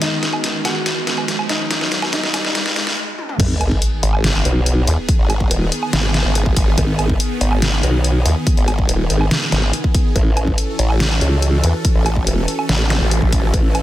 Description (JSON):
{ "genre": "heavy wobble dubstep", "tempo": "142 BPM", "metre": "4/4", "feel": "half-time", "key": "G# phrygian", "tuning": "A4 = 441 Hz", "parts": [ { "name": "warm grand piano", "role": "melody", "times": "0.0-3.0 s", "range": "D#4 to F#5", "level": "-26 LUFS", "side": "left 1 dB", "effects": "digital delay" }, { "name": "supersaw pad", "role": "sustained chords", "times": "0.0-13.8 s", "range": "D#3 to A4", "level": "-25 LUFS", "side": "right 1 dB", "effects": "phaser, sidechain pumping" }, { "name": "dubstep drum kit", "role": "drums", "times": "0.0-13.8 s", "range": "crash cymbal, hi-hat, snare drum, toms, woodblock", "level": "-20 LUFS", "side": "equal", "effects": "high-pass filter on snare, high-pass filter on hats, high-pass filter on perc, high-pass filter on toms, high-pass filter on cymbals, high-pass filter on room" }, { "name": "riser, sub drop and zap", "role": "sound effects", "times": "0.0-5.1, 12.9-13.0 s", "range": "none", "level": "-26 LUFS", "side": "equal", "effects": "none" }, { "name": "warbly tape-like pad", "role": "texture", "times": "0.0-3.0, 11.1-13.8 s", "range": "G#3 to D#5", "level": "-30 LUFS", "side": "equal", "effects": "chorus, built-in reverb, phaser, sidechain pumping" }, { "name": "formant-sweep wobble bass", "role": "bass", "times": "3.4-13.8 s", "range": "D#1 to C#2", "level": "-17 LUFS", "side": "equal", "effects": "chorus, overdrive" }, { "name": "electronic kick drum", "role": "drums", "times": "3.4-13.6 s", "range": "none", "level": "-17 LUFS", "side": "equal", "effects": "overdrive" }, { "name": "formant-sweep wobble bass", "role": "bass", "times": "4.0-13.5 s", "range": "G#1 to E2", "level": "-17 LUFS", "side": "equal", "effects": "chorus, overdrive" } ], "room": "little or no reverb", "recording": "dense, heavily limited modern master, high-pass filter", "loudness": "-15 LUFS", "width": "side -14 dB against mid", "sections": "0.0-3.4 A section; 3.4-13.8 B section", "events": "build-up 0.0-3.4; drum fill 0.0-3.0, 3.2; riser 0.0-3.0; stop 3.0-3.4; drop 3.4-13.8; impact 3.4-5.1", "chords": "0.0 G#m; 10.2 A" }